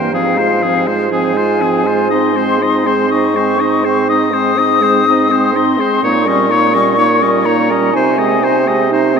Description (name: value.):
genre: classical, slow romantic movement for wind quintet.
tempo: 62 BPM.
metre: 4/4.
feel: rubato.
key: unclear.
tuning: A4 = 440 Hz.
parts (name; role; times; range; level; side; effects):
hollow concert flute; melody; 0.0-8.9 s; F5 to Eb6; -16 LUFS; left 6 dB; none.
bright oboe; second line; 0.0-9.2 s; Ab4 to Eb5; -19 LUFS; left 2 dB; none.
clear French horn; accompaniment; 0.0-9.2 s; E3 to C4; -19 LUFS; equal; none.
clear clarinet; accompaniment; 0.0-9.2 s; Bb3 to F4; -18 LUFS; right 5 dB; none.
dark bassoon; bass; 0.0-9.2 s; G2 to C3; -17 LUFS; right 4 dB; none.
room: wet huge ambient reverb, RT60 7.5 s.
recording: in a vast, echoing space.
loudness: -11 LUFS.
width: side -6 dB against mid.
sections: 0.0-9.2 A section.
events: none.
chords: 0.1 Fm/Ab; 2.1 Ab; 6.0 Eb7/Bb; 7.9 Ab/C.